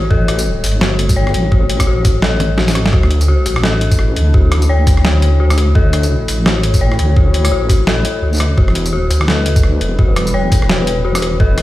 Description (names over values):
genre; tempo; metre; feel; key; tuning
half-time drum and bass; 170 BPM; 4/4; swing 59% on 16ths, half-time; unclear; A4 = 440 Hz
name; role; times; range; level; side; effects
dark analog pad; sustained chords; 0.0-11.6 s; G3 to C#5; -25 LUFS; right 1 dB; chorus, phaser, sidechain pumping
dark detuned synth bell; arpeggios; 0.0-11.6 s; F#4 to C#5; -20 LUFS; left 4 dB; chorus, ping-pong delay
deep soft wobble bass; bass; 0.0-11.6 s; E1 to D2; -14 LUFS; equal; chorus, tube saturation
electronic kick drum; drums; 0.1-11.5 s; none; -12 LUFS; equal; none
boom bap sampler-style drum kit; drums; 0.3-11.6 s; hi-hat, rim click, snare drum, tambourine, toms; -19 LUFS; equal; none
room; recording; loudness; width
little or no reverb; played on a big sound system in a bare room, stone room reverb; -11 LUFS; side -16 dB against mid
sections
0.0-11.6 A section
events
drum fill 2.4-2.9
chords
0.0 A7; 2.9 Dsus2; 8.6 Em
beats
| 0.11 0.46 0.81 1.17 | 1.52 1.87 2.22 2.58 | 2.93 3.28 3.64 3.99 | 4.34 4.69 5.05 5.40 | 5.75 6.11 6.46 6.81 | 7.17 7.52 7.87 8.22 | 8.58 8.93 9.28 9.64 | 9.99 10.34 10.69 11.05 | 11.40